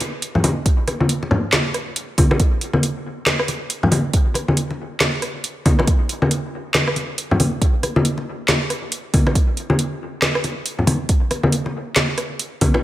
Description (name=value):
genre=dubstep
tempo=138 BPM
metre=4/4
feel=swing 60% on 16ths, half-time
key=none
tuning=none
part: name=garage drum kit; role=drums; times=0.0-12.8 s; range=handclaps, hi-hat, rim click, snare drum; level=-20 LUFS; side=right 1 dB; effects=overdrive
part: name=congas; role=percussion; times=0.0-12.8 s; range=none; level=-20 LUFS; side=left 1 dB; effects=dub echo
part: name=electronic kick drum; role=drums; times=0.7-12.7 s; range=none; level=-17 LUFS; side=equal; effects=none
room=light reverb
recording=none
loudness=-17 LUFS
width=side -14 dB against mid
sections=0.0-12.8 A section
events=none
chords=none